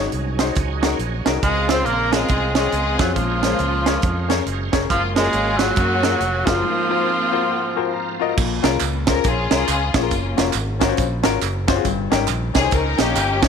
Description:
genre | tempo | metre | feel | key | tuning
uptempo gospel | 138 BPM | 4/4 | swing 61% on 8ths | unclear | A4 = 440 Hz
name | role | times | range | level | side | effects
clear concert grand piano | accompaniment | 0.0-13.5 s | G2 to Bb5 | -24 LUFS | left 13 dB | none
bright tonewheel organ | sustained chords | 0.0-8.4 s | Ab2 to F5 | -31 LUFS | right 11 dB | slow rotary speaker, chorus vibrato
modern bright fingered electric bass | bass | 0.0-13.5 s | F1 to Gb2 | -24 LUFS | equal | none
tight funk drum kit | drums | 0.1-13.5 s | crash cymbal, hi-hat, kick drum, snare drum | -22 LUFS | right 5 dB | none
breathy tenor saxophone | melody | 1.4-8.2 s | F3 to C4 | -22 LUFS | right 3 dB | none
rich studio string section | melody | 1.4-13.5 s | Ab3 to C5 | -23 LUFS | left 4 dB | none
tambourine and handclaps | percussion | 8.4-13.5 s | none | -30 LUFS | right 15 dB | none
room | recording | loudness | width
light reverb, studio ambience | 1960s-style stereo with parts hard left and right | -17 LUFS | side -6 dB against mid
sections
0.0-8.4 A section; 8.4-13.5 B section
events
break 6.6-8.4; grand piano fill 7.1-8.4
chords
0.0 Ab7sus4; 1.4 Dbmaj7; 3.2 Bbm9; 6.6 Ab13; 8.4 Bbm7; 10.1 Gbmaj7; 11.9 Eb7/G

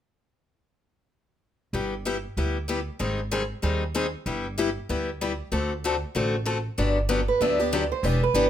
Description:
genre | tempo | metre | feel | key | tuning
acoustic string swing (jazz manouche) | 190 BPM | 4/4 | swing 58% on 8ths | G major | A4 = 440 Hz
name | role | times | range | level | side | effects
picked steel-string acoustic guitar | accompaniment | 1.7-8.5 s | D3 to A4 | -26 LUFS | left 3 dB | none
upright bass | bass | 1.7-8.5 s | E1 to Eb2 | -29 LUFS | right 1 dB | none
picked old ladder-braced acoustic guitar | melody | 7.3-8.5 s | B4 to E5 | -24 LUFS | right 6 dB | none
room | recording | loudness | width
light reverb | none | -24 LUFS | side -10 dB against mid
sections
1.7-6.8 A section; 6.8-8.5 B section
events
none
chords
1.7 G6; 3.0 Abmaj7; 4.3 G6; 5.5 D7; 6.8 Gmaj7

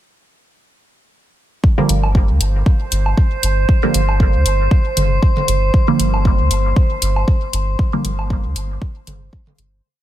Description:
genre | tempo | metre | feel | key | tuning
dub techno | 117 BPM | 4/4 | swing 56% on 16ths | G minor | A4 = 440 Hz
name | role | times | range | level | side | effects
electronic kick drum | drums | 1.6-9.4 s | none | -14 LUFS | equal | small room reverb
drifting glass-harmonics texture | texture | 2.5-9.9 s | C5 | -23 LUFS | right 1 dB | chorus, built-in reverb, sidechain pumping
filtered dub chord stab | stabs | 1.8-8.1 s | D3 to Bb3 | -21 LUFS | right 3 dB | phaser, sidechain pumping, dub echo
pure sine sub bass | bass | 1.9-9.8 s | G1 to D2 | -17 LUFS | equal | sidechain pumping
electronic hi-hat | drums | 1.9-9.7 s | none | -21 LUFS | left 2 dB | small room reverb
electronic woodblock and toms | percussion | 2.0-9.6 s | none | -27 LUFS | right 2 dB | overdrive, sidechain pumping on perc, small room reverb, sidechain pumping on toms, dub echo
room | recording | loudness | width
digital ambience | none | -14 LUFS | side -13 dB against mid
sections
1.6-9.8 groove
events
fade-out 7.1-9.8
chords
1.6 G5

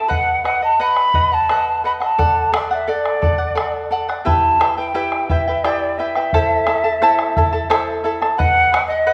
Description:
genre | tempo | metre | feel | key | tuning
andean folk, Andean ensemble | 87 BPM | 3/4 | straight | E minor | A4 = 442 Hz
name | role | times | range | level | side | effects
mellow hollow quena | melody | 0.0-9.1 s | D5 to B5 | -20 LUFS | equal | none
charango | accompaniment | 0.0-9.1 s | E4 to A5 | -22 LUFS | equal | none
bombo | percussion | 0.1-8.9 s | none | -25 LUFS | equal | none
room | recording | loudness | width
moderate scoring stage reverb, RT60 1.7 s | none | -17 LUFS | mono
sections
0.0-9.1 A section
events
none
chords
0.1 B; 2.2 D; 4.3 Em; 6.3 Am; 8.4 B

